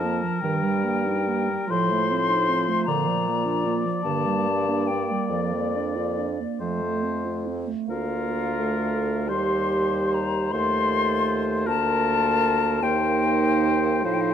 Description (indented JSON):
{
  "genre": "classical, slow romantic movement for wind quintet",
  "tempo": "42-53 BPM (dotted quarters)",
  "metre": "6/8",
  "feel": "rubato",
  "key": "Bb major",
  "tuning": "A4 = 439 Hz",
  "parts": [
    { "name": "hollow concert flute", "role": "melody", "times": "0.0-14.3 s", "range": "D5 to C6", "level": "-26 LUFS", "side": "left 7 dB", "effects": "none" },
    { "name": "mellow oboe", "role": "second line", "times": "0.0-14.3 s", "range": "Bb4 to D5", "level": "-30 LUFS", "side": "left 4 dB", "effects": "none" },
    { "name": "dark clarinet", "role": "accompaniment", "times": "0.0-14.3 s", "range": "D3 to G4", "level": "-29 LUFS", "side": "right 8 dB", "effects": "none" },
    { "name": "warm French horn", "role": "accompaniment", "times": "0.0-14.3 s", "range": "F3 to Bb3", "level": "-29 LUFS", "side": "equal", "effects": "none" },
    { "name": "warm bassoon", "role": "bass", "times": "0.0-14.3 s", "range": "D2 to Bb2", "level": "-28 LUFS", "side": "right 2 dB", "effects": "none" }
  ],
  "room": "light reverb",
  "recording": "close, detailed microphones",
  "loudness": "-21 LUFS",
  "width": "side -9 dB against mid",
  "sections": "0.0-14.3 A section",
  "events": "none",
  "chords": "0.4 Eb/G; 1.7 F7/A; 2.9 Bb; 4.0 Gm; 5.3 Bb/F; 6.6 F; 7.9 Bb/D; 9.3 Cm/Eb; 10.5 F7/Eb; 11.7 Bb/D; 12.8 Cm7/Eb",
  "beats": "| 0.42 1.70 | 2.87 4.05 | 5.31 6.61 | 7.90 9.30 | 10.53 11.68 | 12.83 14.05"
}